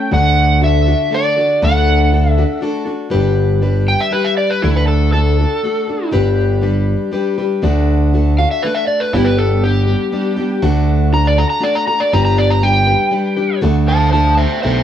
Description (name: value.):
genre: folk rock and heartland rock.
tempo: 120 BPM.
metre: 3/4.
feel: straight.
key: G major.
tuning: A4 = 440 Hz.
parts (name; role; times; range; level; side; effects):
overdriven slide guitar; melody; 0.0-6.1, 8.4-14.8 s; E4 to Bb5; -16 LUFS; equal; cassette tape.
picked plugged-in steel-string acoustic guitar; accompaniment; 0.0-14.8 s; G2 to B4; -18 LUFS; left 3 dB; none.
picked electric bass; bass; 0.1-14.8 s; G1 to D2; -14 LUFS; right 1 dB; none.
room: small room ambience.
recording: home recording on cassette.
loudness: -12 LUFS.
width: side -10 dB against mid.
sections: 0.0-3.1 A section; 3.1-14.8 B section.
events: electric slide guitar solo 3.1-14.8.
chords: 0.1 D; 3.1 G; 4.6 D; 6.1 G; 7.6 D; 9.1 G; 10.6 D; 12.1 G; 13.6 D.